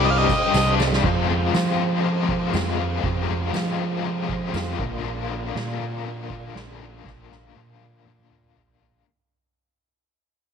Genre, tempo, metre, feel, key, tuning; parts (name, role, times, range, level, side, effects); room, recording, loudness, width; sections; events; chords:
psychedelic rock; 120 BPM; 4/4; straight; F dorian; A4 = 440 Hz
combo organ; melody; 0.0-0.7 s; Eb5 to F5; -24 LUFS; right 1 dB; tape echo
mellow tonewheel organ; sustained chords; 0.0-9.0 s; Ab4 to C6; -35 LUFS; right 15 dB; chorus vibrato, fast rotary speaker
biting overdriven guitar; riff; 0.0-9.1 s; F2 to G4; -26 LUFS; left 12 dB; tremolo
fuzz fingered electric bass; bass; 0.0-9.0 s; Bb1 to F3; -25 LUFS; right 3 dB; overdrive
soft-mallet drum kit; drums; 0.0-9.1 s; crash cymbal, kick drum, ride cymbal, snare drum, toms; -28 LUFS; right 2 dB
tambourine; percussion; 0.1-4.7 s; -40 LUFS; right 17 dB
light reverb; 1960s-style stereo with parts hard left and right; -21 LUFS; side -7 dB against mid
0.0-1.0 A section; 1.0-9.1 B section
drum fill 0.5-1.0, 7.0-9.1; fade-out 1.0-9.1
0.0 Cmadd9; 1.0 Fm; 4.8 Bbadd9